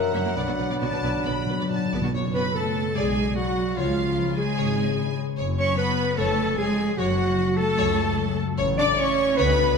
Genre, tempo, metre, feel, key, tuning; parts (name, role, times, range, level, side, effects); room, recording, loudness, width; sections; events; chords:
classical, dramatic, fast romantic movement for symphony orchestra; 149 BPM; 4/4; rubato; F# minor; A4 = 440 Hz
warm symphonic violin section; melody; 0.0-9.6 s; C#5 to B5; -32 LUFS; equal
clear clarinet; second line; 0.0-9.8 s; E#4 to E5; -27 LUFS; left 1 dB
mellow hollow silver concert flute; second line; 0.0-1.9 s; A#5 to B5; -36 LUFS; left 2 dB
mellow oboe; second line; 0.0-1.9 s; F#5; -37 LUFS; right 3 dB
warm bassoon; accompaniment; 0.0-1.9 s; F#3; -34 LUFS; right 2 dB
mellow French horn section; sustained chords; 0.0-1.9 s; C#4 to A#4; -30 LUFS; left 1 dB
concert harp; arpeggios; 0.0-9.8 s; E#2 to C#6; -28 LUFS; left 9 dB
rich symphonic violin section; second line; 0.1-9.8 s; F#4 to D6; -32 LUFS; right 1 dB
rich symphonic viola section; accompaniment; 0.1-9.8 s; A#3 to D5; -30 LUFS; equal
rich symphonic double bass section; bass; 0.1-9.7 s; E#1 to D2; -30 LUFS; right 3 dB
warm symphonic cello section; bass; 0.1-9.8 s; F#2 to D4; -30 LUFS; right 3 dB
timpani; percussion; 0.4-2.1 s; B2; -31 LUFS; right 1 dB
wet scoring stage reverb, RT60 1.7 s; -21 LUFS; side -5 dB against mid
0.0-2.1 A section; 2.1-9.8 B section
timpani fill 0.4-2.1
0.4 Bm; 2.1 F#m; 3.0 Bm; 3.8 C#7; 5.4 F#m; 6.2 C#/E#; 7.0 F#m; 8.6 A